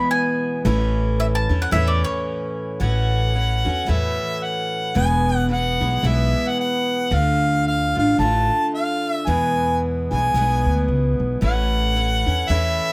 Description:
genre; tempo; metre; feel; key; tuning
acoustic folk duo or small band; 112 BPM; 4/4; swing 58% on 8ths; A major; A4 = 440 Hz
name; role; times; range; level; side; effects
bowl-back mandolin; second line; 0.0-2.8 s; C#5 to A5; -26 LUFS; equal; none
picked steel-string acoustic guitar; accompaniment; 0.0-12.9 s; E2 to F#4; -26 LUFS; equal; none
upright bass; bass; 0.6-12.8 s; E1 to E2; -23 LUFS; equal; none
warm harmonica; melody; 2.8-12.9 s; E5 to A5; -24 LUFS; equal; plate reverb
room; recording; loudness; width
light reverb; none; -21 LUFS; mono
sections
0.0-2.8 A section; 2.8-12.9 B section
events
mandolin solo 0.0-2.8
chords
0.0 E; 0.7 A; 2.8 A6; 5.0 E; 7.1 Dm; 9.3 E; 11.4 A

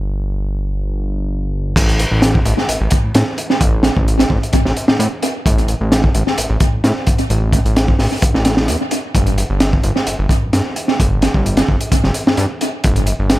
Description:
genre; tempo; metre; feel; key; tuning
breakbeat, breaks; 130 BPM; 4/4; straight; unclear; A4 = 436 Hz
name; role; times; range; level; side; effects
fat analog bass; bass; 0.0-13.4 s; G1 to A2; -17 LUFS; equal; tube saturation
crunchy breakbeat drum kit; drums; 1.8-13.4 s; crash cymbal, hi-hat, kick drum, snare drum; -14 LUFS; equal; dub echo
room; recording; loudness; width
light reverb; echo-heavy mix; -13 LUFS; side -16 dB against mid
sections
0.0-1.8 A section; 1.8-13.4 B section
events
filter sweep 0.0-1.8; drop 1.8-13.4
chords
none

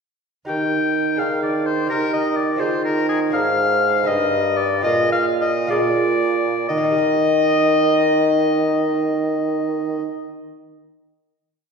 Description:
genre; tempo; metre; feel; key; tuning
classical, baroque-style sonata movement with continuo; 58-86 BPM (dotted quarters); 6/8; straight; Eb major; A4 = 439 Hz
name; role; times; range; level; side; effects
clear oboe; melody; 0.5-10.0 s; Ab4 to G5; -20 LUFS; left 3 dB; none
lute; accompaniment; 0.5-10.3 s; G2 to Eb5; -26 LUFS; right 2 dB; none
warm bassoon; bass; 0.5-10.0 s; G2 to Eb3; -20 LUFS; right 3 dB; none
room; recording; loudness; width
wet scoring stage reverb, RT60 1.6 s; recorded in a church or concert hall; -17 LUFS; side -5 dB against mid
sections
0.5-6.7 A section; 6.7-10.8 final chord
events
slowing down 2.6-6.7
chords
0.5 Eb; 1.2 Bb7/Eb; 1.9 Eb; 2.6 Fm7/Eb; 3.3 Bb7/Ab; 4.1 Eb/G; 4.9 Bb5; 6.7 Eb5

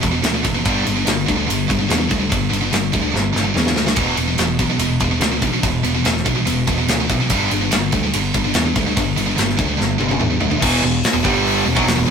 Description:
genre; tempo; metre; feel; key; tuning
heavy metal; 144 BPM; 4/4; straight; unclear; A4 = 441 Hz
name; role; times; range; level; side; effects
heavy high-gain guitar; riff; 0.0-12.1 s; E2 to G3; -23 LUFS; left 6 dB; distortion
heavy high-gain guitar; riff; 0.0-12.1 s; E2 to G3; -20 LUFS; right 4 dB; distortion
picked electric bass; bass; 0.0-12.1 s; E1 to E2; -22 LUFS; equal; none
tight metal drum kit; drums; 0.0-12.0 s; crash cymbal, hi-hat, kick drum, ride cymbal, snare drum, toms; -20 LUFS; equal; none
raw garage guitar; riff; 10.6-12.1 s; E2 to G3; -21 LUFS; right 1 dB; overdrive
room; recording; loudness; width
light reverb; rough rehearsal-room recording, warm saturation; -15 LUFS; side -6 dB against mid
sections
0.0-10.6 A section; 10.6-12.1 B section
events
drum fill 3.1-4.0, 9.8-10.6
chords
0.0 E5; 0.6 G5; 4.0 E5; 7.3 G5; 10.6 E5; 11.2 G5

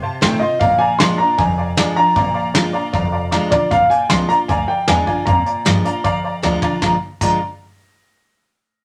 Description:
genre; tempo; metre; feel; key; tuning
rockabilly; 154 BPM; 4/4; straight; Bb mixolydian; A4 = 441 Hz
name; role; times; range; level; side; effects
honky-tonk upright piano; accompaniment; 0.0-7.4 s; C5 to C6; -26 LUFS; equal; none
picked steel-string acoustic guitar; accompaniment; 0.0-7.4 s; F2 to F4; -24 LUFS; equal; none
upright bass; bass; 0.0-7.4 s; F1 to G2; -26 LUFS; equal; none
soft brush drum kit; drums; 0.2-7.3 s; crash cymbal, hi-hat, kick drum, snare drum, toms; -22 LUFS; equal; none
warm upright piano; melody; 0.4-7.4 s; D5 to C6; -19 LUFS; equal; none
room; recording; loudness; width
moderate studio reverb, RT60 0.6 s; none; -16 LUFS; mono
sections
0.0-3.7 A section; 3.7-6.8 B section; 6.8-8.4 C section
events
drum fill 3.3-3.7, 6.4-6.8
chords
0.0 F7; 0.6 Bb7

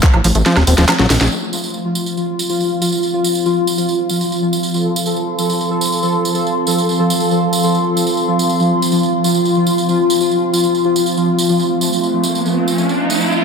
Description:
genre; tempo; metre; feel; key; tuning
psychedelic trance; 140 BPM; 4/4; straight; F major; A4 = 438 Hz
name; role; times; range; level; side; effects
pulsing gated texture; sustained chords; 0.0-13.4 s; F3 to A4; -16 LUFS; left 1 dB; chorus, built-in reverb, sidechain pumping
overdriven acid bass; riff; 0.0-1.1 s; Eb3 to C4; -18 LUFS; left 2 dB; auto-pan, sidechain pumping, ping-pong delay
garage drum kit; drums; 0.0-1.3 s; handclaps, hi-hat, snare drum, woodblock; -16 LUFS; right 1 dB; overdrive, studio reverb
tambourine; percussion; 0.0-13.4 s; none; -23 LUFS; right 4 dB; none
fat analog bass; bass; 0.1-1.3 s; Eb1 to Bb1; -14 LUFS; equal; none
warbly tape-like pad; texture; 2.3-13.4 s; C4 to C6; -20 LUFS; right 1 dB; chorus, built-in reverb, sidechain pumping
riser; sound effects; 12.1-13.4 s; none; -19 LUFS; right 2 dB; none
room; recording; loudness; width
moderate plate reverb, RT60 1.8 s; none; -13 LUFS; side -5 dB against mid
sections
0.0-1.3 A section; 1.3-13.4 B section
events
drum fill 0.5-1.3; band accent 1.2; riser 12.1-13.4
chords
0.0 F5

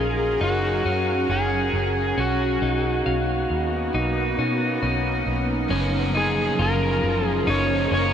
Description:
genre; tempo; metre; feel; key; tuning
dream pop; 68 BPM; 4/4; straight; F# major; A4 = 440 Hz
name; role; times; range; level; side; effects
overdriven slide guitar; melody; 0.0-8.1 s; F#4 to C#5; -25 LUFS; equal; diffuse ambient delay
shimmering ambient pad; sustained chords; 0.0-8.1 s; E#3 to E#5; -27 LUFS; equal; chorus, built-in reverb
clean electric guitar; arpeggios; 0.0-8.1 s; C#4 to E#5; -28 LUFS; left 1 dB; wide subtle chorus, diffuse ambient delay
vintage muted picked electric bass; bass; 0.0-8.1 s; F#1 to B2; -26 LUFS; equal; none
cranked stack guitar; accompaniment; 5.7-8.1 s; F#2 to C#4; -27 LUFS; right 2 dB; overdrive, harmonic tremolo, lush chorus
room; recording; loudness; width
wet huge ambient reverb, RT60 7.4 s; dreamy mix soaked in reverb; -20 LUFS; side -8 dB against mid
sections
0.0-5.7 A section; 5.7-8.1 B section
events
none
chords
0.0 F#maj7; 2.2 Bmaj7; 5.7 F#maj7

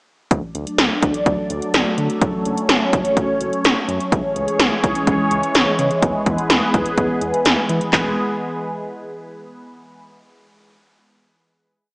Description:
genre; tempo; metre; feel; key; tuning
synth-pop; 126 BPM; 4/4; straight; E mixolydian; A4 = 441 Hz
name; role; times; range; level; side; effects
phased analog pad; sustained chords; 0.3-8.2 s; E3 to D5; -20 LUFS; equal; phaser, chorus
round analog bass; bass; 0.3-8.2 s; E1 to E3; -26 LUFS; equal; none
80s electronic pad drums; drums; 0.3-8.0 s; handclaps, hi-hat, kick drum, snare drum; -17 LUFS; equal; none
room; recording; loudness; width
moderate lush hall reverb, RT60 1.8 s; small speaker sound; -16 LUFS; side -29 dB against mid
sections
0.3-7.9 verse; 7.9-9.8 final chord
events
none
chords
0.3 D; 2.2 F#m; 4.1 C#m; 6.0 E

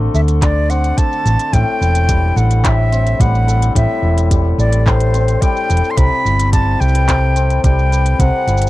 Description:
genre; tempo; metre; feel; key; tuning
folktronica; 108 BPM; 4/4; straight; unclear; A4 = 442 Hz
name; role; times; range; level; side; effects
hammered dulcimer; arpeggios; 0.0-8.7 s; A2 to B4; -20 LUFS; left 4 dB; none
hollow-body short-scale fingered electric bass; bass; 0.0-8.7 s; E1 to D2; -14 LUFS; equal; none
reedy concert flute; melody; 0.1-8.7 s; C5 to C6; -19 LUFS; equal; tape echo
organic electronic drum kit; drums; 0.1-8.7 s; handclaps, hi-hat, shaker; -24 LUFS; right 1 dB; none
electronic kick drum; drums; 0.4-8.3 s; none; -15 LUFS; equal; none
room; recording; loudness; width
little or no reverb; dry, close 1970s-style studio recording; -12 LUFS; side -17 dB against mid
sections
0.0-8.7 A section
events
none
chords
0.0 D7; 1.5 Am7; 6.0 Cmaj7

